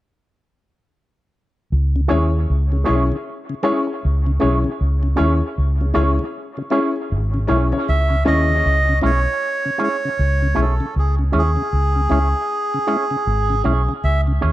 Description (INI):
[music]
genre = reggae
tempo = 78 BPM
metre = 4/4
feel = swing 63% on 16ths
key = C# minor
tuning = A4 = 440 Hz
[part]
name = vintage muted fingered electric bass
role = bass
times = 1.7-14.5 s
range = G#1 to D#2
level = -17 LUFS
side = equal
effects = none
[part]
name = mellow tonewheel organ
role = accompaniment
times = 2.0-14.3 s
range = C#3 to E4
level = -25 LUFS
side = left 2 dB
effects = slow rotary speaker
[part]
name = electric guitar with an envelope filter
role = accompaniment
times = 2.1-14.5 s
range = G#3 to C#5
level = -26 LUFS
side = right 5 dB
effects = dub echo
[part]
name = warm upright piano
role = stabs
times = 2.1-8.4 s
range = C#4 to C#5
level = -23 LUFS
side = left 3 dB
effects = dub echo
[part]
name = melodica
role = melody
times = 7.9-14.2 s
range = G#4 to E5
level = -21 LUFS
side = right 2 dB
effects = dub echo
[sound]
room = moderate spring reverb, RT60 1.8 s, studio reverb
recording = none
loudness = -16 LUFS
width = side -15 dB against mid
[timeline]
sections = 1.7-7.9 A section; 7.9-14.5 B section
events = none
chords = 1.7 C#m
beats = | 1.71 2.48 3.25 4.02 | 4.79 5.56 6.33 7.09 | 7.87 8.63 9.40 10.18 | 10.95 11.71 12.48 13.25 | 14.02